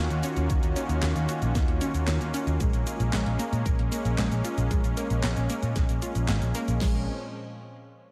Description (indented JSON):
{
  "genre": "synthwave",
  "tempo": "114 BPM",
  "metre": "4/4",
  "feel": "straight",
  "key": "Bb minor",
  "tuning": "A4 = 440 Hz",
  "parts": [
    { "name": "warm analog pad", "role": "sustained chords", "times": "0.0-7.1 s", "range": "Bb2 to Gb4", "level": "-35 LUFS", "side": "equal", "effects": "chorus, sidechain pumping" },
    { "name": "unison pluck", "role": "arpeggios", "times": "0.0-7.1 s", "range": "Ab3 to Db5", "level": "-37 LUFS", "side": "equal", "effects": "delay" },
    { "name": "picked electric bass", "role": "bass", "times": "0.0-7.1 s", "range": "Ab1 to Bb2", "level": "-30 LUFS", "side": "equal", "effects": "tube saturation, sidechain pumping" },
    { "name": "clean 12-bit digital drum machine", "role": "drums", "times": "0.1-6.8 s", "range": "handclaps, hi-hat, shaker, snare drum", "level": "-38 LUFS", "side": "equal", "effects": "none" },
    { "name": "pop drum kit", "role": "drums", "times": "0.5-6.9 s", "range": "crash cymbal, kick drum, snare drum", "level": "-29 LUFS", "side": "equal", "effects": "none" }
  ],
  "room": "light reverb",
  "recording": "none",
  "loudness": "-27 LUFS",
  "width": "mono",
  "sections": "0.0-6.8 A section; 6.8-8.1 B section",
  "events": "none",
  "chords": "0.0 Ebm7; 2.6 Bbm7"
}